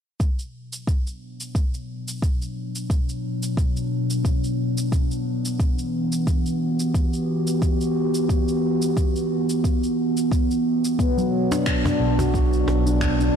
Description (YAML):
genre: organic downtempo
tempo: 89 BPM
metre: 4/4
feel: swing 55% on 16ths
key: B minor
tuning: A4 = 440 Hz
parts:
  - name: warbly tape-like pad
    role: sustained chords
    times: 0.2-13.4 s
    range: B2 to G4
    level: -23 LUFS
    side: equal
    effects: chorus, built-in reverb, sidechain pumping
  - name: electronic kick drum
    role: drums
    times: 0.2-13.2 s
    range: none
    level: -22 LUFS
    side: equal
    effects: none
  - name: electronic shaker and finger snaps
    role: drums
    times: 0.2-13.3 s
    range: none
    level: -35 LUFS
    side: equal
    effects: soft clipping on snare
  - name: handpan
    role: arpeggios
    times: 11.0-13.3 s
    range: F#3 to F#4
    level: -23 LUFS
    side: left 2 dB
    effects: low-pass filter, tape echo
  - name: cajon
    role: percussion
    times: 11.5-12.8 s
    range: none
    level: -29 LUFS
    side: right 2 dB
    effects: none
  - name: smooth synth bass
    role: bass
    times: 12.0-13.3 s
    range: B1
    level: -22 LUFS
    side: equal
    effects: none
room: light reverb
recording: blown-out, overdriven recording, overdrive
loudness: -20 LUFS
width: side -8 dB against mid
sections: 0.2-11.0 A section; 11.0-13.4 B section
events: filter sweep on ambient pad 0.2-11.0; filter sweep on handpan 11.0-13.4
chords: 0.2 Bm; 5.6 Em7; 11.0 Bm